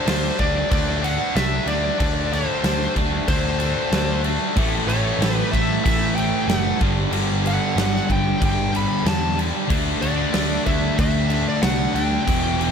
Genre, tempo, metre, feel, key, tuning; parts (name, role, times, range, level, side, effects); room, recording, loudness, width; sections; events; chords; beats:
hard rock; 94 BPM; 4/4; straight; A4 = 440 Hz
smooth overdriven lead guitar; melody; 0.0-12.7 s; C5 to B5; -26 LUFS; equal
high-gain distorted guitar; riff; 0.0-12.7 s; E2 to D4; -25 LUFS; left 1 dB; distortion
picked electric bass; bass; 0.1-12.7 s; E1 to E2; -25 LUFS; equal
huge arena drum kit; drums; 0.1-12.7 s; crash cymbal, kick drum, snare drum; -24 LUFS; equal
sludgy distorted guitar; riff; 4.6-12.7 s; E2 to D4; -24 LUFS; equal; overdrive
little or no reverb; -18 LUFS; side -7 dB against mid
0.0-12.7 A section
0.0 D5; 4.6 A; 6.8 G5; 9.7 D5
0.07 0.71 1.36 | 2.00 2.64 3.28 3.92 | 4.57 5.21 5.85 6.49 | 7.14 7.78 8.42 9.06 | 9.70 10.35 10.99 11.63 | 12.27